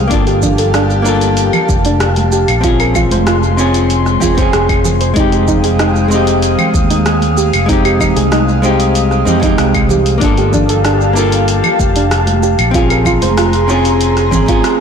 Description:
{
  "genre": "sunset chillout",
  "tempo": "95 BPM",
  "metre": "4/4",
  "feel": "straight",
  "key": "F dorian",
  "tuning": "A4 = 440 Hz",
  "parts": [
    { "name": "hollow-body jazz guitar", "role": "accompaniment", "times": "0.0-14.8 s", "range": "Ab3 to A4", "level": "-16 LUFS", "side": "moving between left 4 dB and right 5 dB", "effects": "auto-pan, ping-pong delay" },
    { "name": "airy breathy pad", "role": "sustained chords", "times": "0.0-14.8 s", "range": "Ab3 to Eb6", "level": "-18 LUFS", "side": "left 1 dB", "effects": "chorus, vintage 12-bit sampler grit" },
    { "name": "fretless electric bass", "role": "bass", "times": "0.0-14.6 s", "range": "F1 to F2", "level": "-15 LUFS", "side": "equal", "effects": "lush chorus" },
    { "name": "soft round pluck", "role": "arpeggios", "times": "0.1-14.6 s", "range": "D4 to Db5", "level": "-18 LUFS", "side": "right 2 dB", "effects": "wide subtle chorus, ping-pong delay" },
    { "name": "deep house drum kit", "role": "drums", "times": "0.1-14.8 s", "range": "claves, hi-hat, rim click, shaker", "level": "-19 LUFS", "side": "equal", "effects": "soft clipping on snare" },
    { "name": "electronic kick drum", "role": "drums", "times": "0.1-14.6 s", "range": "none", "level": "-17 LUFS", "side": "equal", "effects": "none" },
    { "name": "congas", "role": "percussion", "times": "0.4-14.6 s", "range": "none", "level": "-22 LUFS", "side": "right 6 dB", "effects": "none" }
  ],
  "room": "moderate lush hall reverb, RT60 2.2 s",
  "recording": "blown-out, overdriven recording, overdrive",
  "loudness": "-10 LUFS",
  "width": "side -7 dB against mid",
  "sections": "0.0-14.8 A section",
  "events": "none",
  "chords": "0.1 Gm9; 2.6 Bbm9; 5.2 Fm9; 10.2 Gm9; 12.7 Bbm9",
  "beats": "| 0.11 0.74 1.38 2.01 | 2.64 3.27 3.90 4.53 | 5.17 5.80 6.43 7.06 | 7.69 8.32 8.96 9.59 | 10.22 10.85 11.48 12.11 | 12.74 13.38 14.01 14.64"
}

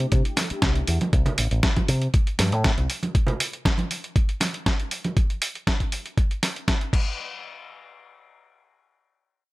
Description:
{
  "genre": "nu-disco, nu disco",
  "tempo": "119 BPM",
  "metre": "4/4",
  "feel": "straight",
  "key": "C major",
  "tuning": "A4 = 441 Hz",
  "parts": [
    { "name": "mellow synth brass", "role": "accompaniment", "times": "0.0-1.1 s", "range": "A3 to A4", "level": "-36 LUFS", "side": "left 2 dB", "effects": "chorus, ping-pong delay" },
    { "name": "fingered electric bass with an envelope filter", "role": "bass", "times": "0.0-2.9 s", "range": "A1 to C3", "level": "-23 LUFS", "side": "equal", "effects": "none" },
    { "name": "dusty soul sampler-style drum kit", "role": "drums", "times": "0.0-7.0 s", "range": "crash cymbal, hi-hat, snare drum", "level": "-26 LUFS", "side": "equal", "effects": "none" },
    { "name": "electronic kick drum", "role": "drums", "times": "0.1-7.0 s", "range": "none", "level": "-22 LUFS", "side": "equal", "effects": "none" },
    { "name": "congas", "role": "percussion", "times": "0.4-5.1 s", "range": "none", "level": "-29 LUFS", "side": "right 2 dB", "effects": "none" }
  ],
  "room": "digital ambience",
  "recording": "none",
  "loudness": "-21 LUFS",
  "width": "side -20 dB against mid",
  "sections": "0.0-7.2 A section; 7.2-9.5 B section",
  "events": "filter sweep on analog polysynth 0.0-1.1",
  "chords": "0.0 C69; 2.9 N.C.",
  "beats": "0.12 0.63 | 1.13 1.64 2.14 2.64 | 3.15 3.65 4.16 4.66 | 5.17 5.67 6.17 6.68"
}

